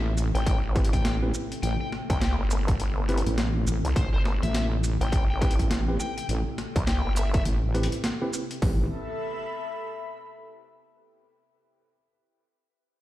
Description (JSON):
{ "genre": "glitch hop", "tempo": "103 BPM", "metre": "4/4", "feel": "swing 61% on 16ths", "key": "A minor", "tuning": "A4 = 441 Hz", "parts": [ { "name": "warbly tape-like pad", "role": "sustained chords", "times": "0.0-8.9 s", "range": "C3 to A4", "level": "-36 LUFS", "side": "left 3 dB", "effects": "chorus, built-in reverb, sidechain pumping" }, { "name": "wobble bass", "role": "bass", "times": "0.0-8.9 s", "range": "A1", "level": "-25 LUFS", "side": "equal", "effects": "chorus, tube saturation" }, { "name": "boom bap sampler-style drum kit", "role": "drums", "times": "0.2-8.6 s", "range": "hi-hat, shaker, snare drum", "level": "-33 LUFS", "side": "equal", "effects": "overdrive" }, { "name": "vowel-sweep wobble bass", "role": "bass", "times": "0.3-7.4 s", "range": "G1 to C2", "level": "-26 LUFS", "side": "equal", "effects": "chorus" }, { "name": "smooth overdriven lead guitar", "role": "melody", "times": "0.4-7.4 s", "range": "C5 to G5", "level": "-37 LUFS", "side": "left 4 dB", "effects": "dub echo" }, { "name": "dubstep drum kit", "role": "drums", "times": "0.5-8.8 s", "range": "hi-hat, kick drum", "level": "-26 LUFS", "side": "equal", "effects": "distortion" }, { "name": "mellow tine electric piano", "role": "stabs", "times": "0.8-8.8 s", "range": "C4 to B4", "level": "-33 LUFS", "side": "right 1 dB", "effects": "vintage 12-bit sampler grit, sidechain pumping, dub echo" }, { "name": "airy breathy pad", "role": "texture", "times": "8.6-10.9 s", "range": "A4 to B5", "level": "-34 LUFS", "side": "left 2 dB", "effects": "chorus, sidechain pumping" } ], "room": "digital ambience", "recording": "played on a big sound system in a bare room, stone room reverb", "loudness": "-24 LUFS", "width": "side -15 dB against mid", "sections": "0.0-8.6 A section; 8.6-11.0 B section", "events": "drop 0.0-8.6", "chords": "0.0 Am7; 8.6 Am9" }